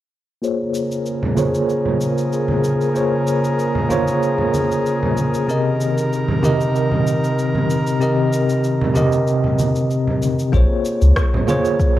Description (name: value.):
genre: sunset chillout.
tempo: 95 BPM.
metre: 4/4.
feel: swing 53% on 16ths.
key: Bb dorian.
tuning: A4 = 440 Hz.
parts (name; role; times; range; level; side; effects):
bell-like tine electric piano; accompaniment; 0.4-12.0 s; C3 to Eb5; -18 LUFS; moving between left 4 dB and right 3 dB; medium stereo tremolo, auto-pan, low-pass filter, tape echo.
airy breathy pad; sustained chords; 0.4-10.5 s; Db3 to Bb4; -22 LUFS; equal; chorus.
electronic shaker and rim click; drums; 0.4-11.9 s; none; -31 LUFS; left 1 dB; studio ambience.
congas; percussion; 1.2-12.0 s; none; -24 LUFS; right 1 dB; none.
warm sub bass; bass; 10.5-11.1 s; Bb1 to Db2; -11 LUFS; equal; none.
electronic kick drum; drums; 10.5-11.9 s; none; -17 LUFS; equal; overdrive, studio ambience.
room: moderate plate reverb, RT60 3.0 s.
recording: worn, warbling old tape, cassette tape, warbly pitch drift.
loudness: -16 LUFS.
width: side -14 dB against mid.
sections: 0.4-10.5 A section; 10.5-12.0 B section.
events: filter sweep on tine electric piano 0.4-10.5; filter sweep on analog synth pad 0.4-10.5.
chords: 0.4 Bbm9; 5.5 Cm7; 10.5 Bbm9.